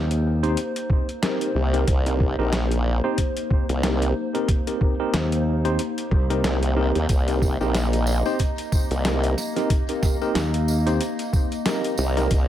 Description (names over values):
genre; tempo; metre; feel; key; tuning
glitch hop; 92 BPM; 4/4; swing 57% on 16ths; C minor; A4 = 441 Hz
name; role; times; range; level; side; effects
warbly tape-like pad; sustained chords; 0.0-12.5 s; Bb3 to Eb5; -29 LUFS; left 2 dB; chorus, built-in reverb, sidechain pumping
modern bright fingered electric bass; bass; 0.0-0.5, 5.1-6.4, 10.4-11.0 s; C2 to Eb2; -22 LUFS; equal; none
boom bap sampler-style drum kit; drums; 0.1-12.5 s; hi-hat, snare drum; -29 LUFS; equal; none
tine electric piano; stabs; 0.4-12.3 s; C4 to C5; -27 LUFS; equal; medium stereo tremolo, vintage 12-bit sampler grit, sidechain pumping, analog delay
electronic kick drum; drums; 0.9-12.5 s; none; -22 LUFS; equal; none
formant-sweep wobble bass; bass; 1.5-12.5 s; Bb1 to Eb2; -22 LUFS; equal; chorus
tambourine; percussion; 7.1-12.5 s; none; -38 LUFS; right 4 dB; none
room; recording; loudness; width
light reverb, digital ambience; echo-heavy mix; -20 LUFS; side -11 dB against mid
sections
0.0-12.5 A section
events
none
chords
0.0 Cm7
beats
0.57 1.22 | 1.88 2.53 3.18 3.83 | 4.49 5.14 5.79 6.44 | 7.09 7.75 8.40 9.05 | 9.70 10.35 11.01 11.66 | 12.31